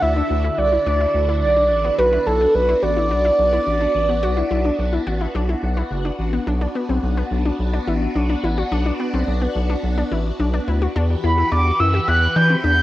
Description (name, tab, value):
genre	pop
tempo	107 BPM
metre	4/4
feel	straight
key	unclear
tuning	A4 = 438 Hz
part	mellow horn-like synth lead	melody	0.0-5.9, 11.2-12.8 s	A4 to G6	-18 LUFS	right 2 dB	chorus
part	phased string machine	sustained chords	0.0-12.8 s	D3 to B4	-26 LUFS	left 1 dB	ensemble chorus, phaser, cassette tape
part	analog pluck	arpeggios	0.0-12.8 s	B3 to G4	-26 LUFS	left 3 dB	chorus, cassette tape, tape echo
part	round analog bass	bass	0.0-12.8 s	F#1 to E3	-20 LUFS	equal	none
room	moderate spring reverb, RT60 1.6 s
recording	home recording on cassette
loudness	-17 LUFS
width	side -15 dB against mid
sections	0.0-6.5 A section; 6.5-11.0 B section; 11.0-12.8 C section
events	none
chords	0.0 Dadd9; 2.0 Bm; 11.0 Emadd9